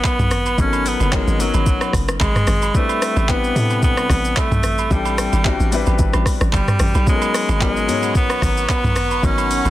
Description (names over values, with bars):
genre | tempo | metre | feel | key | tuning
amapiano | 111 BPM | 4/4 | swing 55% on 16ths | unclear | A4 = 440 Hz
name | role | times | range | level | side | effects
warm baby grand piano | accompaniment | 0.0-9.7 s | C3 to C#5 | -24 LUFS | left 6 dB | none
smooth R&B drum kit | drums | 0.0-9.7 s | handclaps, hi-hat, kick drum, rim click, shaker, toms | -20 LUFS | equal | none
agogo bells and woodblock | percussion | 0.0-9.7 s | none | -28 LUFS | right 10 dB | none
edgy alto saxophone | melody | 0.1-9.7 s | F#3 to C#4 | -21 LUFS | equal | ping-pong delay
hollow log drum bass | bass | 0.2-9.7 s | F#1 to A2 | -20 LUFS | equal | none
airy breathy pad | sustained chords | 7.4-9.7 s | F#5 to C#6 | -29 LUFS | right 2 dB | chorus, sidechain pumping
room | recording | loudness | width
digital ambience | dense, heavily limited modern master | -15 LUFS | side -14 dB against mid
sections
0.0-9.7 A section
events
none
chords
0.0 G#m11; 2.7 Am11; 7.1 G#m11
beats
0.04 | 0.58 1.12 1.67 2.21 | 2.75 3.29 3.83 4.37 | 4.91 5.45 5.99 6.53 | 7.07 7.61 8.15 8.69 | 9.23